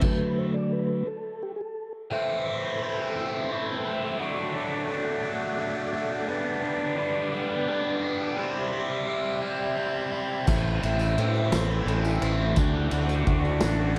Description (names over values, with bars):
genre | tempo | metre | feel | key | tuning
psychedelic rock | 57 BPM (dotted quarters) | 6/8 | straight | A dorian | A4 = 440 Hz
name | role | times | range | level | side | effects
mellow tonewheel organ | sustained chords | 0.0-14.0 s | D3 to D6 | -34 LUFS | equal | fast rotary speaker
biting overdriven guitar | riff | 0.0-14.0 s | A2 to F#4 | -30 LUFS | equal | phaser, tape echo
vintage drum kit | drums | 0.0-0.2, 10.5-14.0 s | crash cymbal, kick drum, ride cymbal, snare drum | -30 LUFS | equal | none
fuzz fingered electric bass | bass | 10.5-13.9 s | A1 to A2 | -28 LUFS | equal | overdrive
tambourine | percussion | 10.5-13.8 s | none | -51 LUFS | equal | tape echo
room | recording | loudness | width
light reverb | echo-heavy mix | -27 LUFS | mono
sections
0.0-2.1 A section; 2.1-14.0 B section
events
tonewheel organ solo 0.0-2.1; stop 0.0-2.1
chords
0.0 D; 2.1 Am; 4.2 D; 6.3 G/D; 8.4 Cadd9; 10.5 Am; 12.6 D